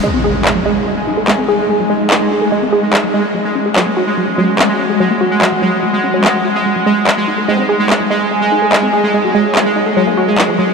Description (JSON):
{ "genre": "psychedelic trance", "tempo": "145 BPM", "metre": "4/4", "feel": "straight", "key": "unclear", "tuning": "A4 = 440 Hz", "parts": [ { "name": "pulsing gated texture", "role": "sustained chords", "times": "0.0-10.7 s", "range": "G#3", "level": "-16 LUFS", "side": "equal", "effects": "chorus, built-in reverb" }, { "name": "woody wave-folded pluck", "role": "riff", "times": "0.0-10.7 s", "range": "E#3 to A4", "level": "-17 LUFS", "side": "moving between left 2 dB and right 4 dB", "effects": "chorus, auto-pan, diffuse ambient delay" }, { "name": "impact", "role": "sound effects", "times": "0.0-1.7 s", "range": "none", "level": "-25 LUFS", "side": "equal", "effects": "none" }, { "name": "warbly tape-like pad", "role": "texture", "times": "0.0-10.7 s", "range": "C#4 to G#5", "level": "-20 LUFS", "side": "right 1 dB", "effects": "chorus, built-in reverb, phaser" }, { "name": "electronic handclaps", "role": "drums", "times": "0.5-10.5 s", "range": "none", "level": "-17 LUFS", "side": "equal", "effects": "overdrive" }, { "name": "formant-sweep wobble bass", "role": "second line", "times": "7.5-9.7 s", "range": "F#3 to B#3", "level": "-27 LUFS", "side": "left 3 dB", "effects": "none" } ], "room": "wet huge ambient reverb, RT60 8.6 s", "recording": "dreamy mix soaked in reverb", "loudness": "-11 LUFS", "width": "side -5 dB against mid", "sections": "0.0-10.7 A section", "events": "impact 0.0-1.7", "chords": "0.0 G#5; 3.3 F#5; 6.7 G#5; 10.0 F#5" }